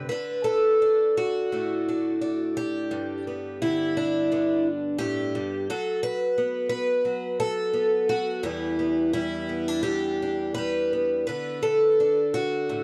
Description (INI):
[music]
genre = folk, solo fingerstyle acoustic guitar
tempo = 86 BPM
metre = 4/4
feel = rubato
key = unclear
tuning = A4 = 438 Hz
[part]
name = picked twelve-string acoustic guitar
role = solo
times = 0.0-12.8 s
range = E2 to B4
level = -26 LUFS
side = equal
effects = none
[sound]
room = light reverb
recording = dry, close 1970s-style studio recording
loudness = -25 LUFS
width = mono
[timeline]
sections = 0.1-12.8 A section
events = none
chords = 0.1 D6; 2.9 G; 5.7 F#madd11; 8.4 Em7; 11.3 D6